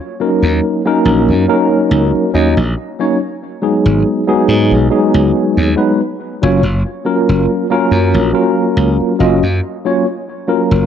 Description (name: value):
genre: vaporwave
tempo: 70 BPM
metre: 4/4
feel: swing 54% on 16ths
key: F# major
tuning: A4 = 440 Hz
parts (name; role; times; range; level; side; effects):
- bright tine electric piano; accompaniment; 0.2-10.9 s; F#3 to D#5; -12 LUFS; equal; medium stereo tremolo, wide subtle chorus, analog delay
- glassy slap bass; bass; 0.4-10.9 s; F#1 to G#2; -14 LUFS; equal; tube saturation
room: wet recital hall reverb, RT60 1.4 s, digital ambience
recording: cassette tape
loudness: -11 LUFS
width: side -8 dB against mid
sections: 0.0-10.9 A section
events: none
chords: 0.0 D#m7; 3.2 G#m7; 6.2 F#maj7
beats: 0.63 1.49 2.34 | 3.20 4.06 4.91 5.77 | 6.63 7.49 8.34 9.20 | 10.06